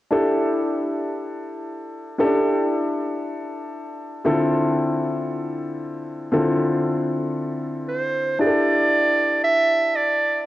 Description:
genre	funk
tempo	116 BPM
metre	4/4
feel	straight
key	unclear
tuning	A4 = 444 Hz
part	warm concert grand piano	accompaniment	0.1-10.5 s	D3 to A4	-22 LUFS	left 1 dB	cassette tape
part	clear clarinet	melody	7.9-10.5 s	C5 to E5	-18 LUFS	right 2 dB	cassette tape
room	moderate lush hall reverb, RT60 2.5 s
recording	home recording on cassette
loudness	-19 LUFS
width	side -15 dB against mid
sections	0.1-8.4 A section; 8.4-10.5 B section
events	none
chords	0.1 A7sus4; 4.3 Dm9; 8.4 A7sus4

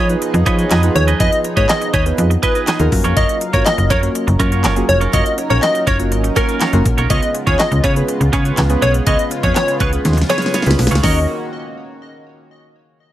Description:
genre	dance-pop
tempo	122 BPM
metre	4/4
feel	straight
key	Eb minor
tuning	A4 = 440 Hz
part	plucky unison lead	melody	0.0-11.3 s	Bb4 to Eb5	-19 LUFS	left 1 dB	sidechain pumping, digital delay
part	chorused pulse-width pad	sustained chords	0.0-11.3 s	Db3 to F5	-25 LUFS	right 1 dB	sidechain pumping
part	twelve-string electric guitar	riff	0.0-11.2 s	Cb4 to Eb5	-22 LUFS	right 5 dB	wide subtle chorus
part	slap-like FM bass	bass	0.0-11.3 s	F1 to F3	-16 LUFS	equal	sidechain pumping
part	warm analog keys	accompaniment	0.1-11.3 s	Bb3 to Db5	-22 LUFS	equal	chorus, sidechain pumping
part	pop drum kit	drums	0.1-11.1 s	handclaps, hi-hat, kick drum, snare drum	-19 LUFS	equal	none
room	little or no reverb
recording	none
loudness	-13 LUFS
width	side -13 dB against mid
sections	0.0-11.0 A section; 11.0-13.0 B section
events	drop 0.0-11.0; drum fill 10.1-11.0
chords	0.0 Fm7b5; 2.9 Gbmaj7; 7.1 Db7; 11.0 Ebm7

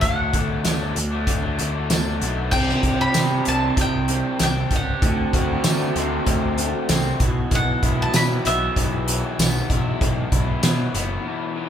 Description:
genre	indie rock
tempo	96 BPM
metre	4/4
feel	straight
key	unclear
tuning	A4 = 439 Hz
part	bowl-back mandolin	melody	0.0-11.7 s	E5 to B5	-25 LUFS	left 1 dB	none
part	raw garage guitar	riff	0.0-11.7 s	B2 to G4	-27 LUFS	left 4 dB	overdrive
part	raw garage guitar	riff	0.0-11.7 s	B2 to G4	-28 LUFS	right 4 dB	overdrive
part	fuzz picked electric bass	bass	0.0-11.2 s	F#1 to D3	-25 LUFS	equal	overdrive
part	loose indie drum kit	drums	0.0-11.1 s	crash cymbal, hi-hat, kick drum, snare drum, tambourine	-22 LUFS	equal	none
room	moderate stone room reverb, RT60 1.3 s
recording	band playing live in one room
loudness	-18 LUFS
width	side -9 dB against mid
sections	0.0-2.5 A section; 2.5-11.7 B section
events	break 11.3-11.7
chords	0.0 D; 2.5 Csus2; 5.0 D7; 7.2 Bsus4

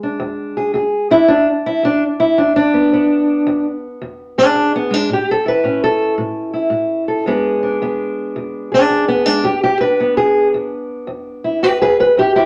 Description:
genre	acoustic country blues, solo or duo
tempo	110 BPM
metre	4/4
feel	swing 65% on 8ths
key	E mixolydian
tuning	A4 = 438 Hz
part	fingerpicked steel-string acoustic guitar	solo	0.0-12.5 s	E2 to B4	-16 LUFS	equal	none
room	wet studio reverb, RT60 0.8 s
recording	none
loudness	-16 LUFS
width	mono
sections	0.0-12.5 A section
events	steel-string acoustic guitar solo 0.0-12.5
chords	0.0 E7; 5.1 A; 7.3 E7

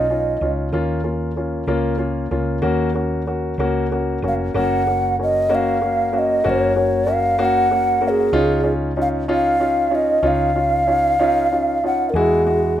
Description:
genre	six-eight pop ballad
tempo	63 BPM (dotted quarters)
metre	6/8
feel	straight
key	unclear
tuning	A4 = 440 Hz
part	mellow hollow round clay ocarina	melody	0.0-0.5, 4.3-12.8 s	G#4 to Gb5	-18 LUFS	right 1 dB	slapback echo, plate reverb
part	dark concert grand piano	accompaniment	0.0-12.8 s	G#3 to Gb4	-21 LUFS	left 2 dB	plate reverb
part	woody fretless electric bass	bass	0.0-12.8 s	F1 to E2	-25 LUFS	equal	none
room	moderate studio ambience, RT60 0.5 s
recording	rough home demo mix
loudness	-16 LUFS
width	side -11 dB against mid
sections	0.0-4.6 A section; 4.6-12.8 B section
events	none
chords	0.0 Dbadd9; 0.7 Bbm/Eb; 2.6 Gb/Eb; 4.6 Gb; 8.3 Dbadd9; 12.1 Eadd9

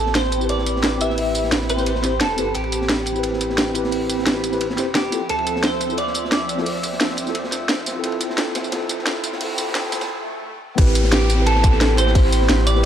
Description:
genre	liquid drum and bass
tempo	175 BPM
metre	4/4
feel	straight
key	A minor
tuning	A4 = 437 Hz
part	twelve-string electric guitar	melody	0.0-12.8 s	G4 to E5	-24 LUFS	right 2 dB	harmonic tremolo, tape echo
part	lush unison pad	sustained chords	0.0-12.9 s	F3 to B5	-29 LUFS	right 1 dB	chorus, sidechain pumping
part	warm sub bass	bass	0.0-12.9 s	D1 to D2	-23 LUFS	equal	tube saturation
part	crunchy breakbeat drum kit	drums	0.1-12.9 s	hi-hat, ride cymbal, snare drum	-29 LUFS	equal	high-pass filter on cymbals, high-pass filter on hats, high-pass filter on snare, high-pass filter on room
part	drum and bass drum kit	drums	0.2-12.7 s	crash cymbal, hi-hat, snare drum, tambourine	-23 LUFS	equal	none
part	mellow tine electric piano	accompaniment	0.4-12.9 s	C4 to C5	-25 LUFS	equal	medium stereo tremolo, low-pass filter
part	riser, swell and downlifter	sound effects	7.4-12.9 s	none	-32 LUFS	equal	none
part	electronic kick drum	drums	10.8-12.2 s	none	-15 LUFS	equal	none
room	light reverb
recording	dark, warm production, high-pass filter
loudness	-18 LUFS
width	side -10 dB against mid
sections	0.0-10.8 A section; 10.8-12.9 B section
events	build-up 0.0-10.8; filter sweep on tine electric piano 0.0-10.8; filter sweep 0.0-10.8; riser 7.4-10.1; break 10.1-10.8; swell 10.1-10.8; drop 10.8-12.9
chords	0.0 Am7; 5.1 Dm7; 10.8 Am7

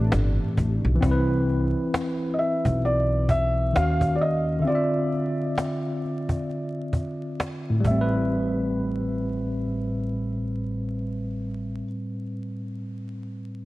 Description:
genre	lo-fi hip hop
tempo	66 BPM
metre	4/4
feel	swing 59% on 16ths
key	A minor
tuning	A4 = 441 Hz
part	felt-muted upright piano	melody	0.0-11.8 s	D5 to E#5	-28 LUFS	equal	low-pass filter, tape echo
part	tine electric piano	accompaniment	0.0-13.7 s	A2 to E#5	-26 LUFS	equal	slow stereo tremolo, cassette tape, low-pass filter
part	warm analog pad	sustained chords	0.0-1.0 s	E3 to D4	-35 LUFS	equal	chorus, low-pass filter
part	upright bass	bass	0.0-11.8 s	G1 to D#2	-26 LUFS	equal	none
part	cajon	drums	0.1-8.1 s	none	-28 LUFS	equal	none
room	light reverb, small room ambience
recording	vinyl crackle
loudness	-23 LUFS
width	side -18 dB against mid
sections	0.0-1.0 A section; 1.0-8.3 B section; 8.3-11.9 C section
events	break 4.7-8.3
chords	0.0 Am11/G; 1.0 Cmaj7; 3.8 D#m9; 4.7 Dm9; 7.8 Am9

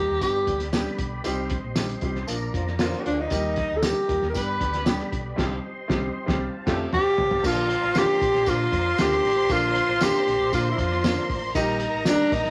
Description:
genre	uptempo 1960s-style soul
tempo	116 BPM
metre	4/4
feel	straight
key	Bb major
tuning	A4 = 441 Hz
part	breathy tenor saxophone	melody	0.0-12.5 s	D4 to B4	-25 LUFS	equal	none
part	warm upright piano	accompaniment	0.0-12.3 s	D3 to G4	-33 LUFS	equal	none
part	tonewheel organ	sustained chords	0.0-12.5 s	F4 to C6	-39 LUFS	equal	slow rotary speaker, chorus vibrato
part	hollow-body short-scale fingered electric bass	bass	0.0-12.5 s	F1 to Bb2	-34 LUFS	equal	none
part	cloth-damped thuddy drum kit	drums	0.2-12.5 s	crash cymbal, hi-hat, kick drum, snare drum, toms	-30 LUFS	equal	none
part	tambourine	percussion	0.2-12.2 s	none	-41 LUFS	equal	none
part	mellow horn section	second line	0.5-6.8 s	C3 to G4	-37 LUFS	equal	none
part	warm studio violin section	second line	7.5-12.5 s	Bb4 to C6	-31 LUFS	equal	none
room	wet studio reverb, RT60 0.7 s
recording	none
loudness	-24 LUFS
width	mono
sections	0.0-7.4 A section; 7.4-12.5 B section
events	drum fill 5.4-7.4; band accent 5.4-7.4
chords	0.2 G; 1.3 Cm; 2.3 Bb; 3.3 Eb; 4.4 G; 5.4 Cm; 6.4 Fadd9; 7.4 Bb; 11.6 Eb

